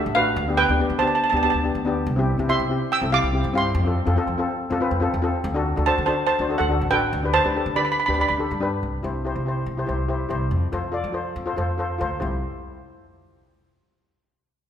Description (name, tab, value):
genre	calypso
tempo	142 BPM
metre	4/4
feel	straight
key	C major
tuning	A4 = 440 Hz
part	steel pan	melody	0.0-8.4 s	G4 to E6	-21 LUFS	right 3 dB	none
part	steel pan	accompaniment	0.0-12.4 s	A3 to D5	-25 LUFS	left 3 dB	none
part	upright bass	bass	0.0-12.4 s	A1 to F3	-26 LUFS	equal	none
room	moderate scoring stage reverb, RT60 2.0 s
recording	minimal, uncompressed stereo recording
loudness	-20 LUFS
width	side -9 dB against mid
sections	0.0-8.8 A section; 8.8-12.2 B section; 12.2-13.9 C section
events	none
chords	0.4 G/D; 2.1 Cadd9; 3.7 F; 5.4 D7; 7.1 G/D; 8.8 C; 10.5 F; 12.2 C